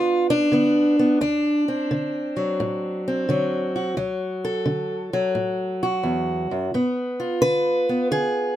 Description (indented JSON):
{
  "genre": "acoustic country blues, solo or duo",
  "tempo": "87 BPM",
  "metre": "4/4",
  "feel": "swing 67% on 8ths",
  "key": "D mixolydian",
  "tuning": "A4 = 442 Hz",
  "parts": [
    { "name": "fingerpicked steel-string acoustic guitar", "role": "solo", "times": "0.0-8.6 s", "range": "D2 to B4", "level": "-20 LUFS", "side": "equal", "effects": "none" }
  ],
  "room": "little or no reverb",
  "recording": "close, detailed microphones",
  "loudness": "-20 LUFS",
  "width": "side -12 dB against mid",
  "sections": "0.0-8.6 A section",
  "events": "none",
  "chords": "0.0 G (rootless); 1.2 D7; 6.7 G7"
}